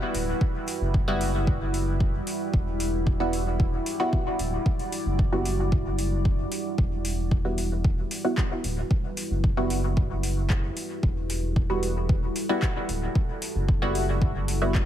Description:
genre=dub techno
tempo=113 BPM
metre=4/4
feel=straight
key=E minor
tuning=A4 = 440 Hz
part: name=deep dark ambient pad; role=sustained chords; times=0.0-14.9 s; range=G3 to D5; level=-32 LUFS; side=equal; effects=chorus, built-in reverb, sidechain pumping
part: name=round analog bass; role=bass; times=0.1-14.9 s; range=D1 to F#1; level=-28 LUFS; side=equal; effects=tube saturation, sidechain pumping
part: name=deep house drum kit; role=drums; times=0.1-14.9 s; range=handclaps, hi-hat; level=-35 LUFS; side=left 1 dB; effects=overdrive
part: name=electronic kick drum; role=drums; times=0.4-14.9 s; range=none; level=-24 LUFS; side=equal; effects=overdrive
part: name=filtered dub chord stab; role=stabs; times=1.1-14.8 s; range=G3 to F#4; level=-30 LUFS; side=equal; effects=chorus, phaser, sidechain pumping, dub echo
room=little or no reverb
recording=echo-heavy mix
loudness=-23 LUFS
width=side -11 dB against mid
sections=0.0-14.9 A section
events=none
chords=0.0 Emadd9

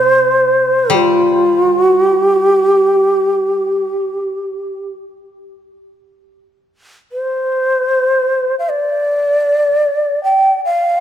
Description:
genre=japanese traditional, Japanese chamber music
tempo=free time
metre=none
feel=none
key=unclear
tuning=A4 = 438 Hz
part: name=breathy hollow shakuhachi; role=melody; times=0.0-11.0 s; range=G4 to G5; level=-12 LUFS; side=equal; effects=none
part: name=koto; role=accompaniment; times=0.0-3.8 s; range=C3 to G3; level=-22 LUFS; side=left 5 dB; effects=none
room=moderate church reverb, RT60 3.2 s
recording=none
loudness=-12 LUFS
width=side -10 dB against mid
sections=0.0-5.8 A section; 5.8-11.0 A section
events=none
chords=none

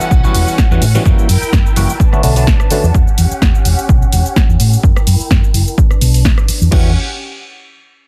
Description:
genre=filtered disco house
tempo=127 BPM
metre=4/4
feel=swing 54% on 16ths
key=E dorian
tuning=A4 = 440 Hz
part: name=clav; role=accompaniment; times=0.0-2.9, 6.7-6.9 s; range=D3 to A4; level=-20 LUFS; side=equal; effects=phaser, sidechain pumping, low-pass filter
part: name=warm symphonic string section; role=sustained chords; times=0.0-6.9 s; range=C#4 to A5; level=-26 LUFS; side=equal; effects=sidechain pumping, low-pass filter
part: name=house drum kit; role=drums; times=0.0-6.8 s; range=crash cymbal, hi-hat, rim click, shaker, snare drum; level=-22 LUFS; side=equal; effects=sidechain pumping on perc, sidechain pumping on hats, sidechain pumping on cymbals
part: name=tambourine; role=percussion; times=0.0-6.7 s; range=none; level=-36 LUFS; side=equal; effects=none
part: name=hollow-body short-scale fingered electric bass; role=bass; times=0.1-6.9 s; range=E1 to A2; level=-15 LUFS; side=equal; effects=sidechain pumping, low-pass filter
part: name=electronic kick drum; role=drums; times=0.1-6.8 s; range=none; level=-14 LUFS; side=equal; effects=none
room=little or no reverb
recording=dense, heavily limited modern master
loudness=-12 LUFS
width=mono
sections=0.0-6.7 A section; 6.7-8.1 B section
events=filter sweep on fingered electric bass 0.0-6.7; filter sweep 0.0-6.7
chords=0.0 Em69; 1.1 F#7b9; 2.0 Bm7; 2.9 Em69; 4.8 F#7b9; 5.8 Bm7; 6.7 Em69

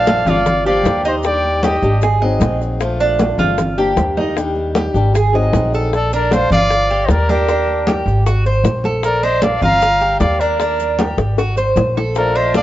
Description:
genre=latin, Cuban son and guajira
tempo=154 BPM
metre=4/4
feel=straight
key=unclear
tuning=A4 = 441 Hz
part: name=bright trumpet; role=melody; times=0.0-2.2, 5.9-12.6 s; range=G4 to F5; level=-18 LUFS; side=equal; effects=none
part: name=breathy bright jazz flute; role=second line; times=0.0-2.0, 5.9-12.6 s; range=Bb4 to Bb5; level=-22 LUFS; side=left 3 dB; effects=none
part: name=picked swing-style acoustic guitar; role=accompaniment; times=0.0-5.9, 12.2-12.6 s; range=Eb3 to Ab4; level=-20 LUFS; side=left 2 dB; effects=none
part: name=Cuban tres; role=arpeggios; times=0.0-12.6 s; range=D4 to Eb5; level=-20 LUFS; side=right 4 dB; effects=none
part: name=upright bass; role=bass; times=0.0-12.6 s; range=G1 to Eb2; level=-19 LUFS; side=equal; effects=none
part: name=bongos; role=percussion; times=0.1-12.6 s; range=none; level=-22 LUFS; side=left 5 dB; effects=none
part: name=congas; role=percussion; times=0.1-12.6 s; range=none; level=-21 LUFS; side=left 1 dB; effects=none
part: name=maracas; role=percussion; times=0.1-12.6 s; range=none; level=-40 LUFS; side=right 7 dB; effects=none
room=light reverb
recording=worn, warbling old tape, cassette tape, warbly pitch drift, nothing above 7.7 kHz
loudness=-13 LUFS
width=side -14 dB against mid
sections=0.0-5.9 A section; 5.9-12.6 A section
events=drum fill 11.2-12.2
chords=0.5 Gm7; 1.2 Ebmaj7; 2.0 Ab7; 2.8 Bbmaj7; 3.6 Gm7; 4.4 Ebmaj7; 5.1 Ab7; 5.9 Bb; 6.7 G5; 7.5 Ebmaj7; 8.3 Ab7; 9.0 Bbmaj7; 9.8 Gm7; 10.6 Ebmaj7; 11.4 Ab7

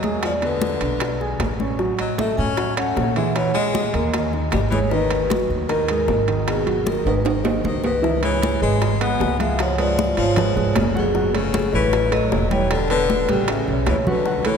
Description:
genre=Afro-Cuban jazz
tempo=154 BPM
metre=4/4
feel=straight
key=G# minor, C# minor from 8.0 s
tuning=A4 = 438 Hz
part: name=vibraphone with medium mallets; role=melody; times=0.0-14.6 s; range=G#4 to G#5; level=-24 LUFS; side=left 1 dB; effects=none
part: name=bright baritone saxophone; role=second line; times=0.0-14.6 s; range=B2 to C#4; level=-26 LUFS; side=left 4 dB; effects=none
part: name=dark grand piano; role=accompaniment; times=0.0-14.6 s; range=D#3 to G#5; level=-25 LUFS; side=right 3 dB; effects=none
part: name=upright bass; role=bass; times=0.0-14.6 s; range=E1 to A#2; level=-24 LUFS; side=right 1 dB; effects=none
part: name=congas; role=percussion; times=0.0-14.6 s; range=none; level=-30 LUFS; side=left 2 dB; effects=none
part: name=timbales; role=percussion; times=0.0-14.6 s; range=none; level=-29 LUFS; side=right 4 dB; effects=none
part: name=bongos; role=percussion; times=0.2-14.5 s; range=none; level=-30 LUFS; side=left 6 dB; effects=none
room=wet cathedral reverb, RT60 4.4 s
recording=recorded in a church or concert hall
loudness=-18 LUFS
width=side -6 dB against mid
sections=0.0-8.0 A section; 8.0-14.6 B section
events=drum fill 7.1-8.0, 13.1-14.3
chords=0.2 E7; 1.8 A6; 3.4 C#m69; 4.1 D#5; 4.9 G#m7; 7.3 G#; 8.0 C#m9; 9.6 C#7b9; 11.2 F#m7; 12.7 Em7; 13.5 A69

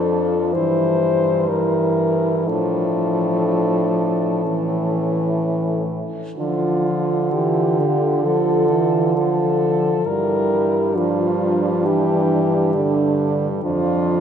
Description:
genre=classical, lyrical piece for horn quartet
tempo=60-68 BPM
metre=4/4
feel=rubato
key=D minor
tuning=A4 = 441 Hz
part: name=warm French horn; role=melody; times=0.0-14.2 s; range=F4 to C5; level=-22 LUFS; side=left 4 dB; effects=none
part: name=mellow French horn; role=second line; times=0.0-14.2 s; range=C#4 to F4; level=-24 LUFS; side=right 10 dB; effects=none
part: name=mellow French horn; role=accompaniment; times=0.0-14.2 s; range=D3 to G3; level=-21 LUFS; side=left 1 dB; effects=none
part: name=clear French horn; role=bass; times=0.0-14.2 s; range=F2 to D3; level=-24 LUFS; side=right 2 dB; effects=none
room=wet cathedral reverb, RT60 6.0 s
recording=nothing above 10.7 kHz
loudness=-17 LUFS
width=side -8 dB against mid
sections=0.0-14.2 A section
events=none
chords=0.0 Dm/F; 0.5 Edim/G; 2.5 Dm/A; 4.4 A; 6.4 Dm; 10.1 Gm7; 13.7 Dm/F

